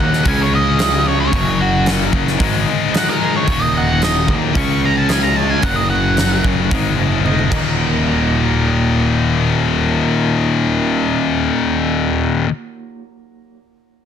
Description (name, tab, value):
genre	quiet-loud alternative rock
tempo	111 BPM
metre	4/4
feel	straight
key	Eb minor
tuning	A4 = 440 Hz
part	octave-fuzz lead guitar	melody	0.0-6.4 s	Gb4 to Db6	-20 LUFS	right 3 dB	distortion, tape echo
part	twangy electric guitar	arpeggios	0.0-12.5 s	Eb2 to Ab4	-24 LUFS	right 4 dB	tremolo, tape echo
part	scooped high-gain guitar	riff	0.0-12.5 s	Eb2 to Db4	-18 LUFS	left 8 dB	distortion
part	fuzz picked electric bass	bass	0.0-12.4 s	Eb1 to Eb2	-19 LUFS	right 1 dB	overdrive
part	huge arena drum kit	drums	0.1-7.6 s	crash cymbal, hi-hat, kick drum, snare drum, toms	-20 LUFS	equal	none
room	small room ambience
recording	dense, heavily limited modern master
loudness	-13 LUFS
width	side -8 dB against mid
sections	0.0-7.8 A section; 7.8-12.1 B section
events	lead electric guitar solo 0.0-7.8; drum fill 7.2-7.8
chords	0.2 Db5; 1.3 Gb; 2.4 Ab5; 3.5 Ebm; 4.5 Db5; 5.6 Gb; 6.7 Ab5; 7.5 Ebm